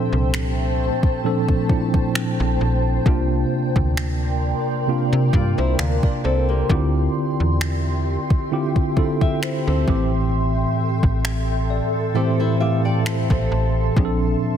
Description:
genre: contemporary R&B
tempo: 66 BPM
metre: 4/4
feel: swing 54% on 16ths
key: D minor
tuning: A4 = 439 Hz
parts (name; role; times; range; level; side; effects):
- tine electric piano; accompaniment; 0.0-14.6 s; A2 to A5; -21 LUFS; right 1 dB; overdrive, fast stereo tremolo
- granular cloud pad; sustained chords; 0.0-14.6 s; A3 to C6; -27 LUFS; left 1 dB; built-in reverb, sidechain pumping
- slap-like FM bass; bass; 0.1-14.4 s; A1 to C3; -22 LUFS; equal; none
- smooth R&B drum kit; drums; 0.3-14.2 s; finger snaps, kick drum; -22 LUFS; equal; overdrive, soft clipping on snare
- flamenco guitar; arpeggios; 5.3-13.9 s; Bb3 to E5; -28 LUFS; left 3 dB; ping-pong delay
room: light reverb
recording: dense, heavily limited modern master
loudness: -18 LUFS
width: side -9 dB against mid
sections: 0.0-14.6 A section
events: tine electric piano fill 11.2-14.0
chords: 0.0 Gm11; 3.1 C9sus4; 6.7 Dm11; 9.9 Am7; 14.0 Gm11/Bb (rootless)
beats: 0.33 1.24 2.15 | 3.06 3.97 4.88 5.79 | 6.69 7.60 8.51 9.42 | 10.33 11.24 12.15 13.06 | 13.97

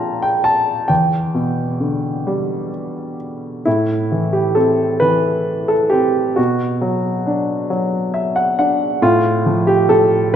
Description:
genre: classical, lyrical solo piano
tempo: 44 BPM (dotted quarters)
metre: 6/8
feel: rubato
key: A minor from 3.7 s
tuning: A4 = 438 Hz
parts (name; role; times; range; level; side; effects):
- warm baby grand piano; solo; 0.0-10.4 s; E2 to Bb5; -15 LUFS; equal; none
room: moderate concert hall reverb, RT60 2.0 s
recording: minimal, uncompressed stereo recording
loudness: -15 LUFS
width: side -9 dB against mid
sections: 0.0-3.7 A section; 3.7-10.4 B section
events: grand piano fill 7.7-9.0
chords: 0.0 Bb; 0.9 Em7; 3.7 Am; 6.4 Bm; 9.0 G7sus2/A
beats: | 0.90 2.27 | 3.66 5.03 | 6.38 7.71 | 9.02 10.34

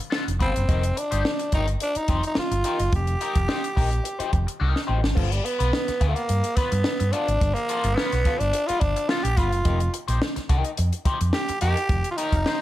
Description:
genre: funk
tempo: 107 BPM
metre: 4/4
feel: straight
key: G mixolydian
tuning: A4 = 440 Hz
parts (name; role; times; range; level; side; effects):
- electric guitar at the edge of break-up; accompaniment; 0.0-12.6 s; B3 to C5; -31 LUFS; left 5 dB; wah, spring reverb
- compact cocktail drum kit; drums; 0.1-12.6 s; crash cymbal, hi-hat, kick drum, snare drum; -26 LUFS; equal; none
- fingered electric bass; bass; 0.3-12.4 s; F1 to G2; -24 LUFS; equal; none
- growling tenor saxophone; melody; 0.4-12.6 s; F3 to G4; -26 LUFS; right 1 dB; none
room: light reverb, small room ambience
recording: none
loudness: -21 LUFS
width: side -14 dB against mid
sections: 0.0-5.2 A section; 5.2-12.6 B section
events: drum fill 4.6-5.2; tenor saxophone solo 5.2-12.6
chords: 0.0 G9; 0.7 F9sus4; 5.2 G9; 9.7 F9sus4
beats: 0.13 | 0.69 1.25 1.81 2.37 | 2.93 3.49 4.05 4.61 | 5.17 5.73 6.29 6.85 | 7.41 7.97 8.53 9.09 | 9.65 10.22 10.78 11.34 | 11.90 12.46

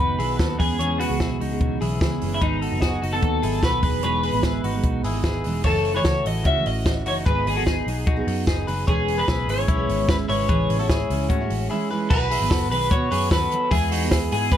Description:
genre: jangly indie pop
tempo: 149 BPM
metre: 4/4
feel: straight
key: B mixolydian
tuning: A4 = 440 Hz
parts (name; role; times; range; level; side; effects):
- electric guitar through a small old amp; melody; 0.0-14.6 s; D#4 to E5; -25 LUFS; left 2 dB; lush chorus
- picked steel-string acoustic guitar; accompaniment; 0.0-14.6 s; F#2 to B4; -28 LUFS; right 6 dB; none
- string machine, cellos; sustained chords; 0.0-5.6, 8.9-12.1 s; C#3 to F#4; -33 LUFS; equal; phaser, ensemble chorus
- direct-recorded clean electric guitar; arpeggios; 0.0-14.6 s; C#4 to C#5; -29 LUFS; left 3 dB; wide subtle chorus
- vintage muted picked electric bass; bass; 0.0-14.6 s; E1 to B2; -26 LUFS; equal; none
- compact cocktail drum kit; drums; 0.2-14.6 s; crash cymbal, hi-hat, kick drum, snare drum; -24 LUFS; equal; none
room: light reverb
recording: none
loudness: -19 LUFS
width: side -10 dB against mid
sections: 0.0-5.7 A section; 5.7-12.1 B section; 12.1-14.6 C section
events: break 11.7-12.1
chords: 0.0 B; 0.6 E6; 2.4 G#m7; 3.8 Emaj7; 5.7 F#m7; 7.3 G#m7; 8.9 E6; 10.5 Amaj7; 12.1 B; 13.7 Eadd9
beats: 0.40 | 0.80 1.20 1.61 2.01 | 2.42 2.82 3.23 3.63 | 4.03 4.44 4.84 5.25 | 5.65 6.05 6.46 6.86 | 7.27 7.67 8.07 8.48 | 8.88 9.29 9.69 10.09 | 10.50 10.90 11.30 11.71 | 12.11 12.51 12.91 13.31 | 13.72 14.12 14.52

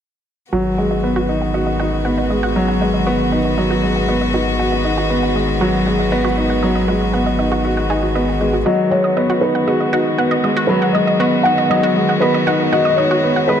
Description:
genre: piano and strings electronica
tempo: 118 BPM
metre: 4/4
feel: straight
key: G# minor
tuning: A4 = 439 Hz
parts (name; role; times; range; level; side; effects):
- warm string quartet; sustained chords; 0.5-13.6 s; D#3 to F#4; -21 LUFS; left 1 dB; low-pass filter
- analog pluck; arpeggios; 0.5-13.5 s; F#4 to F#5; -24 LUFS; right 3 dB; chorus, digital delay
- clear upright piano; riff; 0.5-13.6 s; F#3 to F#4; -17 LUFS; equal; digital delay
- round analog bass; bass; 0.5-8.6 s; G#1; -23 LUFS; equal; none
- felt-muted upright piano; melody; 8.7-13.6 s; G#4 to F#5; -17 LUFS; left 1 dB; low-pass filter
room: moderate lush hall reverb, RT60 2.4 s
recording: none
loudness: -14 LUFS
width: side -8 dB against mid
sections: 0.5-8.7 A section; 8.7-13.6 B section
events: build-up 8.7-13.6; filter sweep on string quartet 8.7-13.6; filter sweep on felt piano 8.7-13.6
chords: 0.5 G#m7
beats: | 0.53 1.03 1.54 2.05 | 2.56 3.07 3.58 4.08 | 4.59 5.10 5.61 6.12 | 6.63 7.14 7.64 8.15 | 8.66 9.17 9.68 10.19 | 10.70 11.20 11.71 12.22 | 12.73 13.24

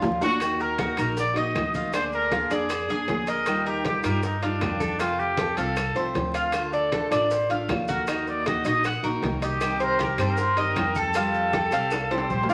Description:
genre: latin, Cuban son and guajira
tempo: 156 BPM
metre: 4/4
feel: straight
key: Bb major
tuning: A4 = 441 Hz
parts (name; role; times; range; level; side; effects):
- picked steel-string acoustic guitar; accompaniment; 0.0-12.5 s; C3 to Ab4; -33 LUFS; equal; none
- Cuban tres; arpeggios; 0.0-12.5 s; D4 to F5; -30 LUFS; equal; none
- upright bass; bass; 0.0-12.5 s; A1 to G2; -35 LUFS; equal; none
- bongos; percussion; 0.0-12.5 s; none; -37 LUFS; equal; none
- congas; percussion; 0.0-12.5 s; none; -37 LUFS; equal; none
- maracas; percussion; 0.0-12.5 s; none; -48 LUFS; equal; none
- timbales; percussion; 0.0-12.5 s; none; -38 LUFS; equal; none
- warm trumpet; melody; 0.2-12.5 s; D4 to Gb5; -30 LUFS; equal; none
- claves; percussion; 0.4-12.1 s; none; -41 LUFS; equal; none
room: wet studio reverb, RT60 0.7 s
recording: vinyl crackle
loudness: -25 LUFS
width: mono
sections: 0.4-12.5 A section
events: drum fill 0.0-0.4, 11.9-12.5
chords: 0.0 Bb; 1.9 Bb7/D; 3.5 Ebadd9; 5.0 F; 6.5 Dm; 8.1 Ebm; 9.6 Cm; 11.2 Fadd9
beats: 0.03 | 0.41 0.79 1.17 1.55 | 1.94 2.32 2.70 3.09 | 3.47 3.85 4.24 4.62 | 5.00 5.39 5.77 6.16 | 6.54 6.92 7.31 7.69 | 8.08 8.46 8.85 9.23 | 9.61 10.00 10.38 10.77 | 11.15 11.54 11.92 12.31

